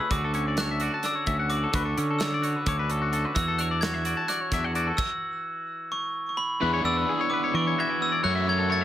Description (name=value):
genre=math rock and midwest emo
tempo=258 BPM (eighths)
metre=7/8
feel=straight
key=unclear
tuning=A4 = 440 Hz
part: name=glockenspiel with hard plastic mallets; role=melody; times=0.0-8.8 s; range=B5 to A6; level=-29 LUFS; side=equal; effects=none
part: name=twangy electric guitar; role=accompaniment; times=0.0-8.8 s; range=F#2 to F#4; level=-33 LUFS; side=right 5 dB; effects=none
part: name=twangy electric guitar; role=arpeggios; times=0.0-8.8 s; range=F#4 to A5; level=-30 LUFS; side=left 6 dB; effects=none
part: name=fuzz fingered electric bass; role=bass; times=0.1-8.8 s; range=D2 to E3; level=-29 LUFS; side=equal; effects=overdrive
part: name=modern studio drum kit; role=drums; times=0.1-5.1 s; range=crash cymbal, hi-hat, kick drum, snare drum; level=-31 LUFS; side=right 1 dB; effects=none
part: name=crunchy overdriven guitar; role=riff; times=6.6-8.8 s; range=E3 to G#4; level=-31 LUFS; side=right 1 dB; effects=none
room=moderate studio reverb, RT60 0.7 s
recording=none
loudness=-24 LUFS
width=side -11 dB against mid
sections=0.0-6.6 A section; 6.6-8.8 B section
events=stop 5.0-6.6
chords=0.1 Dmaj7; 3.4 E7sus2; 6.6 E13; 8.2 F#m7